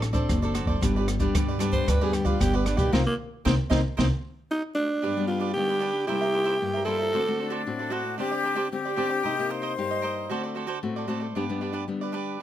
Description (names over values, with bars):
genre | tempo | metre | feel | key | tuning
samba and choro | 114 BPM | 4/4 | straight | unclear | A4 = 443 Hz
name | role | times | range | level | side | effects
cavaquinho | accompaniment | 0.0-12.4 s | D4 to E5 | -32 LUFS | right 6 dB | none
nylon-string guitar | accompaniment | 0.0-12.4 s | G2 to A4 | -30 LUFS | left 4 dB | none
upright bass | bass | 0.0-4.1 s | F#1 to G2 | -26 LUFS | equal | none
open jazz drum kit | drums | 0.0-4.1 s | hi-hat, kick drum, rim click, snare drum | -27 LUFS | right 1 dB | none
growling alto saxophone | melody | 1.7-7.6 s | Bb3 to C5 | -26 LUFS | right 1 dB | plate reverb
breathy jazz flute | second line | 7.4-10.6 s | D4 to C5 | -29 LUFS | left 4 dB | none
room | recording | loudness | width
light reverb | close, detailed microphones | -24 LUFS | side -12 dB against mid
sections
0.0-5.0 A section; 5.0-12.4 B section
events
alto saxophone solo 0.0-5.0; band accent 2.9-5.0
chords
0.0 D7; 0.8 G; 2.9 Cm7; 5.0 G; 6.1 C7; 7.1 D7; 8.2 Gsus4/D; 9.2 Cm7; 10.3 D7; 11.4 G